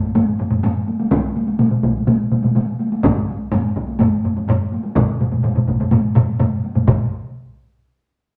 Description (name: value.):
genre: japanese traditional, taiko drum ensemble.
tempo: 125 BPM.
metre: 4/4.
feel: straight.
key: none.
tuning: none.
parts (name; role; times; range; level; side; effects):
taiko ensemble; percussion; 0.0-7.1 s; none; -22 LUFS; equal; none.
taiko ensemble; percussion; 0.2-7.3 s; none; -23 LUFS; equal; none.
taiko ensemble; percussion; 1.1-7.1 s; none; -24 LUFS; equal; none.
solo taiko drums; percussion; 1.6-7.3 s; none; -21 LUFS; equal; none.
room: wet studio reverb, RT60 0.9 s.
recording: none.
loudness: -18 LUFS.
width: mono.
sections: 0.0-6.9 A section; 6.9-8.4 B section.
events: none.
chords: none.